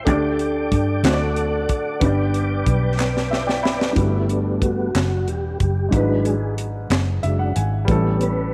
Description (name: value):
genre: slow gospel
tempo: 62 BPM (dotted quarters)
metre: 6/8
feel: straight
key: G major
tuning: A4 = 441 Hz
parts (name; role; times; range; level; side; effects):
- warm upright piano; accompaniment; 0.0-8.5 s; G2 to B5; -26 LUFS; equal; none
- tonewheel organ; sustained chords; 0.0-8.5 s; F#3 to D6; -28 LUFS; equal; slow rotary speaker, chorus vibrato
- fingered electric bass; bass; 0.0-8.5 s; E1 to G2; -24 LUFS; equal; none
- tight funk drum kit; drums; 0.1-8.4 s; hi-hat, kick drum, snare drum; -26 LUFS; equal; none
- group handclap; percussion; 1.1-7.2 s; none; -34 LUFS; equal; none
room: light reverb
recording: none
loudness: -20 LUFS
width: mono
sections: 0.0-4.0 A section; 4.0-8.5 B section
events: drum fill 3.0-4.0; upright piano fill 3.0-4.0, 6.9-7.9; tonewheel organ solo 4.0-8.5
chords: 0.1 Dsus4; 1.0 D; 2.0 G; 4.0 Gmaj7; 5.9 E7/G#; 7.9 A7